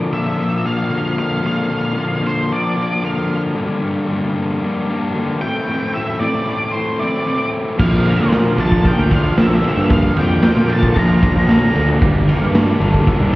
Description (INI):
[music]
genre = indie rock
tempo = 114 BPM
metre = 4/4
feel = straight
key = Bb lydian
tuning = A4 = 441 Hz
[part]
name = fuzz guitar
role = riff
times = 0.0-13.4 s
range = G2 to E4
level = -18 LUFS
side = left 2 dB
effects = distortion
[part]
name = octave-fuzz lead guitar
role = melody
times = 0.1-11.9 s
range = C5 to Bb5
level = -24 LUFS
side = right 1 dB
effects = distortion, analog delay
[part]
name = glockenspiel with soft plastic mallets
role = second line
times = 6.7-11.9 s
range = C6 to Bb6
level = -33 LUFS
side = right 4 dB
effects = none
[part]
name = raw garage guitar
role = riff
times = 7.8-13.4 s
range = F3 to A4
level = -26 LUFS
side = right 6 dB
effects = overdrive, ensemble chorus, analog delay
[part]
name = fuzz picked electric bass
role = bass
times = 7.8-13.4 s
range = G1 to Bb2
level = -16 LUFS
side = equal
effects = overdrive
[part]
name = raw garage drum kit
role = drums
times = 7.8-13.4 s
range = crash cymbal, kick drum, ride cymbal, snare drum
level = -16 LUFS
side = equal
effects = none
[sound]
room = little or no reverb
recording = heard muffled through a wall, stone room reverb, EQ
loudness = -14 LUFS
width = side -18 dB against mid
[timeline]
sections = 0.0-13.4 A section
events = none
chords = 0.0 Bb; 3.6 Gm; 5.4 Am7; 7.8 Bb; 12.0 Gmadd9